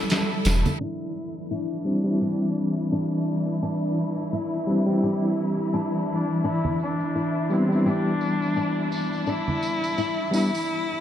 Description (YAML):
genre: trip hop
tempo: 85 BPM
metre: 4/4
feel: swing 59% on 16ths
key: unclear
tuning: A4 = 439 Hz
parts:
  - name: rich cello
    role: melody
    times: 0.0-11.0 s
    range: C4 to E4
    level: -30 LUFS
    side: left 1 dB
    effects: tape echo
  - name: dark symphonic string section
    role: sustained chords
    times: 0.0-10.7 s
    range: E3 to A4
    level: -29 LUFS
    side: equal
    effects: none
  - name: trip hop sampler-style drum kit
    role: drums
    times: 0.1-0.7 s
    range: hi-hat, snare drum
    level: -27 LUFS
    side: equal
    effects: none
  - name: tambourine and congas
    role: percussion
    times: 0.1-0.8, 6.4-10.7 s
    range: none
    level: -34 LUFS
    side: right 2 dB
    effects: none
  - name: warm sub bass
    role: bass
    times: 0.5-0.6 s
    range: E1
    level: -21 LUFS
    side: equal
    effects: tube saturation
  - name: flamenco guitar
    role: arpeggios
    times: 0.8-10.2 s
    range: D4 to G4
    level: -31 LUFS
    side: left 2 dB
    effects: analog chorus, low-pass filter, tape echo
  - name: barky reed electric piano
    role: accompaniment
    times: 1.8-10.5 s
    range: G3 to E4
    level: -26 LUFS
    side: equal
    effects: overdrive, tremolo, tape echo
room: wet huge ambient reverb, RT60 6.2 s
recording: dreamy mix soaked in reverb, vinyl crackle, low-pass filter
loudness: -22 LUFS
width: side -10 dB against mid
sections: 0.8-11.0 A section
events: filter sweep on nylon-string guitar 0.8-11.0; filter sweep 0.8-11.0; break 10.7-11.0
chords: 0.0 Em; 0.8 D9sus4; 6.4 Em7